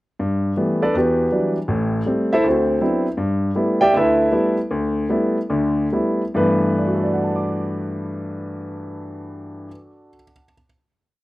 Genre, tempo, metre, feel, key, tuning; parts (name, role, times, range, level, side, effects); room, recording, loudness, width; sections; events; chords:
jazz; 137-161 BPM; 4/4; swing 63% on 8ths; G major; A4 = 441 Hz
clear grand piano; solo; 0.2-10.6 s; A1 to D6; -18 LUFS; equal
little or no reverb; recorded outdoors, with no room sound; -17 LUFS; side -18 dB against mid
0.2-6.3 A section; 6.3-9.9 final chord
slowing down 3.2-6.3
0.2 G69; 0.9 Em9; 1.7 Am7; 2.4 D13; 3.2 G69